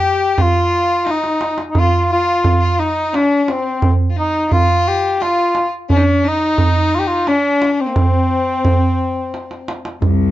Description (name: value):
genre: Arabic maqam ensemble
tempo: 87 BPM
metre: 3/4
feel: straight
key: C maqam bayati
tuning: A4 = 440 Hz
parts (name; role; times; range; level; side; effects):
- dark cor anglais; melody; 0.0-9.7 s; C4 to G4; -16 LUFS; left 1 dB; plate reverb
- clear violin; second line; 0.0-9.7 s; Bb3 to G4; -22 LUFS; left 5 dB; none
- darbuka; percussion; 0.0-10.2 s; none; -17 LUFS; right 2 dB; none
- bright studio cello section; drone; 10.0-10.3 s; C2; -16 LUFS; left 5 dB; none
room: light reverb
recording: dark, warm production, nothing above 7.8 kHz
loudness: -13 LUFS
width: side -14 dB against mid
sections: 0.0-10.0 A section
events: drum fill 1.1-1.8, 9.3-10.0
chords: none